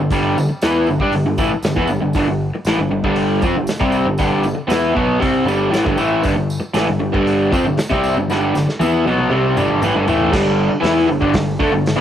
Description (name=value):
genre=garage rock duo or trio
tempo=117 BPM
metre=4/4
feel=straight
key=G major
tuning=A4 = 440 Hz
part: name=raw garage guitar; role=riff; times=0.0-12.0 s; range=G2 to E4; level=-15 LUFS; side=equal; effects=overdrive, cassette tape
part: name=growling picked electric bass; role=bass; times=0.0-12.0 s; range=G1 to G2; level=-25 LUFS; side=equal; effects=overdrive
part: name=vintage drum kit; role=drums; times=0.1-12.0 s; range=crash cymbal, hi-hat, kick drum, snare drum, toms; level=-23 LUFS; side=equal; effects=cassette tape
part: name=tambourine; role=percussion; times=0.1-10.2 s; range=none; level=-39 LUFS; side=right 3 dB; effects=none
room=light reverb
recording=home recording on cassette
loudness=-14 LUFS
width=side -10 dB against mid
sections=0.0-10.3 A section; 10.3-12.0 B section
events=drum fill 8.3-10.3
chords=0.0 G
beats=| 0.11 0.62 1.13 1.64 | 2.15 2.66 3.17 3.68 | 4.20 4.71 5.22 5.73 | 6.24 6.75 7.26 7.78 | 8.29 8.80 9.31 9.82 | 10.33 10.85 11.36 11.87